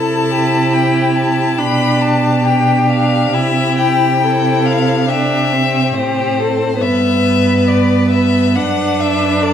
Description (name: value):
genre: classical, slow romantic movement for string quartet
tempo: 69 BPM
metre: 4/4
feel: rubato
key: C major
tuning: A4 = 445 Hz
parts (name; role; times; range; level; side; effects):
- rich violin; melody; 0.0-9.5 s; C5 to B5; -18 LUFS; left 8 dB; none
- rich violin; second line; 0.0-9.5 s; G4 to B4; -19 LUFS; left 4 dB; none
- rich viola; accompaniment; 0.0-9.5 s; B3 to E4; -16 LUFS; right 2 dB; none
- warm cello; bass; 0.0-9.5 s; F#2 to C3; -17 LUFS; right 2 dB; none
room: wet recital hall reverb, RT60 1.4 s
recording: recorded in a church or concert hall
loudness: -12 LUFS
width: side -9 dB against mid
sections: 0.0-9.5 A section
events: none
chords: 0.0 C; 1.6 G/B; 3.3 C; 6.8 G; 8.6 D/F#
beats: 0.75 1.61 2.47 | 3.34 4.23 5.10 5.97 | 6.82 7.69 8.56 9.43